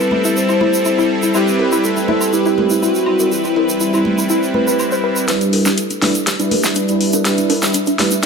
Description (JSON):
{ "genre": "progressive house", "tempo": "122 BPM", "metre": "4/4", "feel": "straight", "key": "E minor", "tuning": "A4 = 440 Hz", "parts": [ { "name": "soft octave-layered synth lead", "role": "melody", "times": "0.0-8.3 s", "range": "E4 to E5", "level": "-21 LUFS", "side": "equal", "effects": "chorus, phaser, digital delay" }, { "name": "soft supersaw", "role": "stabs", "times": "0.0-8.1 s", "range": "G3 to B4", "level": "-17 LUFS", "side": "right 1 dB", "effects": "low-pass filter, digital delay" }, { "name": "egg shaker", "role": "percussion", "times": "0.0-8.3 s", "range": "none", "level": "-24 LUFS", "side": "right 3 dB", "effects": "none" }, { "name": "woodblock, congas and cowbell", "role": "percussion", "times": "0.0-8.1 s", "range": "none", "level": "-26 LUFS", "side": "right 1 dB", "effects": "none" }, { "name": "soft round pluck", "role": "arpeggios", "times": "0.1-8.3 s", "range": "D4 to C5", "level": "-20 LUFS", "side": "left 2 dB", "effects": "wide subtle chorus, digital delay" }, { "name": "deep house drum kit", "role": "drums", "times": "5.3-8.3 s", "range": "hi-hat, snare drum", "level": "-19 LUFS", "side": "left 1 dB", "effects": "overdrive, high-pass filter on snare, low-pass filter on snare, high-pass filter on hats, low-pass filter on hats" } ], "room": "moderate scoring stage reverb, RT60 2.0 s", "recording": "none", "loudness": "-13 LUFS", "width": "side -5 dB against mid", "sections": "0.0-5.3 A section; 5.3-8.3 B section", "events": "build-up 5.3-8.3; drum fill 5.3-8.3; filter sweep on supersaw synth 5.3-8.3", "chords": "0.0 Am7; 1.3 Cmaj7; 5.3 Em7" }